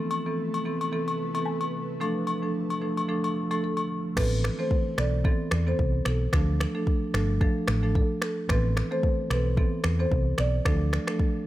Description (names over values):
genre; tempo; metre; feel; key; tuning
afrobeats; 111 BPM; 4/4; swing 55% on 16ths; D dorian; A4 = 440 Hz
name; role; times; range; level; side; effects
marimba with medium mallets; accompaniment; 0.0-11.4 s; E3 to A4; -29 LUFS; right 1 dB; none
ethereal airy pad; sustained chords; 0.0-4.1 s; C3 to B4; -38 LUFS; equal; ensemble chorus, built-in reverb, phaser
agogo bells and woodblock; percussion; 0.1-3.9 s; none; -32 LUFS; left 4 dB; none
marimba with soft mallets; melody; 3.6-11.4 s; A4 to D5; -33 LUFS; equal; tape echo
hollow-body short-scale fingered electric bass; bass; 4.2-11.0 s; G1 to E2; -26 LUFS; equal; none
afro-pop drum kit; drums; 4.2-11.3 s; crash cymbal, finger snaps, kick drum, rim click; -27 LUFS; equal; none
room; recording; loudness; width
little or no reverb; none; -24 LUFS; side -15 dB against mid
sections
0.0-4.2 A section; 4.2-11.5 B section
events
hi-hats muted 4.2-11.5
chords
0.0 Amadd9; 2.0 Dm; 4.2 Amadd9; 6.3 Dm; 8.5 Amadd9; 10.7 Dm